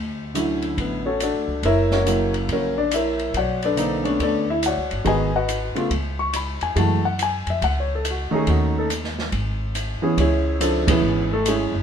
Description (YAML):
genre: jazz piano trio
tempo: 140 BPM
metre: 4/4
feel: swing 64% on 8ths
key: F# minor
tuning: A4 = 441 Hz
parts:
  - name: upright bass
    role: bass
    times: 0.0-11.8 s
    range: F#1 to F#2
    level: -25 LUFS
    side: equal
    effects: none
  - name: warm concert grand piano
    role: melody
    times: 0.3-11.7 s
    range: C#3 to C#6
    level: -21 LUFS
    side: equal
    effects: none
  - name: open jazz drum kit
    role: drums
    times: 0.4-11.6 s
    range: hi-hat, kick drum, ride cymbal, snare drum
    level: -28 LUFS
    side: equal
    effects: none
room: light reverb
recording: minimal, uncompressed stereo recording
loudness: -19 LUFS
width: side -8 dB against mid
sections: 0.0-10.2 A section; 10.2-11.8 B section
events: band accent 10.8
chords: 0.0 Dmaj9; 1.6 F#7; 3.3 Bm9; 5.1 G#m7; 5.9 C#m7; 6.8 F#m9; 8.5 D#m7b5; 9.3 N.C.; 10.2 C#m7